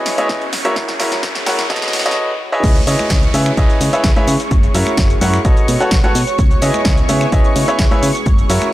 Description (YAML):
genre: piano house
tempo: 128 BPM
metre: 4/4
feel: straight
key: C# minor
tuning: A4 = 440 Hz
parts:
  - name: analog string pad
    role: sustained chords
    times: 0.0-8.7 s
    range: C#5 to C#6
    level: -25 LUFS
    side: right 2 dB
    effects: ensemble chorus, sidechain pumping
  - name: bright upright piano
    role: riff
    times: 0.0-8.7 s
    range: E4 to F#5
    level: -18 LUFS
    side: equal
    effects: sidechain pumping, tape echo
  - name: riser and downlifter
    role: sound effects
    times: 0.0-6.4 s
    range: none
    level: -27 LUFS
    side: right 1 dB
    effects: none
  - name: granular cloud pad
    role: texture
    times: 0.0-8.7 s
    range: C#4 to C#5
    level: -27 LUFS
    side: equal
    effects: built-in reverb, sidechain pumping
  - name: punchy analog drum machine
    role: drums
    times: 0.1-8.7 s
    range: crash cymbal, finger snaps, hi-hat, shaker, snare drum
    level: -21 LUFS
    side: equal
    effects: none
  - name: tambourine and congas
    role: percussion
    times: 0.1-8.7 s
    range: none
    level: -28 LUFS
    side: right 2 dB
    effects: none
  - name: electronic kick drum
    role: drums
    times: 0.3-8.4 s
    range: none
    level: -14 LUFS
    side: equal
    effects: none
  - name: solid FM bass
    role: bass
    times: 2.6-8.6 s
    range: F#1 to C#3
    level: -18 LUFS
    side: equal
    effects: tube saturation, sidechain pumping
room: digital ambience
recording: dry, gritty hardware recording, transformer saturation, high-pass filter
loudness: -12 LUFS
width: side -15 dB against mid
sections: 0.0-2.6 A section; 2.6-8.7 B section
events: build-up 0.0-2.6; drum fill 0.0-2.2; riser 0.0-2.2; drop 2.6-8.7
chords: 0.0 C#m9; 0.8 F#7; 1.7 B9; 2.6 C#m9; 4.5 F#7; 5.4 B9; 6.4 C#m9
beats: 0.29 | 0.76 1.23 1.70 2.17 | 2.64 3.10 3.57 4.04 | 4.51 4.98 5.45 5.92 | 6.39 6.86 7.32 7.79 | 8.26 8.73